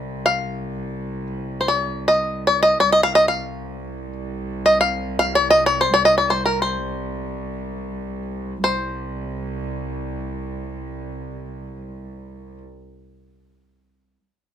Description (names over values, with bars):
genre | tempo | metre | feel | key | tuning
Arabic maqam ensemble | free time | none | none | unclear | A4 = 440 Hz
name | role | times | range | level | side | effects
bluegrass banjo | melody | 0.0-12.6 s | Bb4 to F5 | -16 LUFS | equal | none
rich chamber cello section | drone | 0.0-12.6 s | C2 | -29 LUFS | right 1 dB | none
room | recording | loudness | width
moderate studio reverb, RT60 0.5 s | minimal, uncompressed stereo recording | -19 LUFS | side -9 dB against mid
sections
0.0-8.6 A section; 8.6-12.0 B section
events
slowing down 2.9-8.6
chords
none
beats
free time